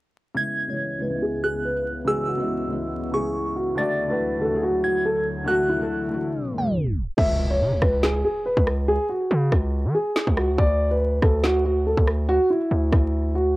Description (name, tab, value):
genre	hip hop, drill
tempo	141 BPM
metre	4/4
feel	half-time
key	C# phrygian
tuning	A4 = 441 Hz
part	felt-muted upright piano	accompaniment	0.3-7.2 s	C#3 to A4	-29 LUFS	left 1 dB	low-pass filter
part	dark concert grand piano	melody	0.4-13.6 s	E4 to E5	-24 LUFS	equal	low-pass filter
part	delicate synth tine bell	second line	0.4-6.7 s	C#6 to A6	-29 LUFS	right 2 dB	chorus, tremolo, tape echo
part	warbly tape-like pad	sustained chords	0.9-7.1 s	C#2 to E4	-32 LUFS	equal	chorus, built-in reverb, phaser, low-pass filter
part	distorted 808-style bass	bass	7.2-13.6 s	C#2 to E3	-23 LUFS	equal	distortion
part	drill drum kit	drums	7.2-13.0 s	crash cymbal, kick drum, rim click, snare drum	-21 LUFS	equal	cassette tape
part	impact	sound effects	7.2-8.9 s	none	-34 LUFS	equal	none
room	little or no reverb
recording	home recording on cassette, vinyl crackle, tape stop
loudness	-20 LUFS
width	side -20 dB against mid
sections	0.4-7.2 A section; 7.2-13.6 B section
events	filter sweep 0.4-7.2; tape stop 6.3-7.2; hi-hats muted 7.2-13.6; impact 7.2-8.9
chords	0.4 C#m7; 3.8 Dadd9; 7.2 C#5; 10.6 Dadd9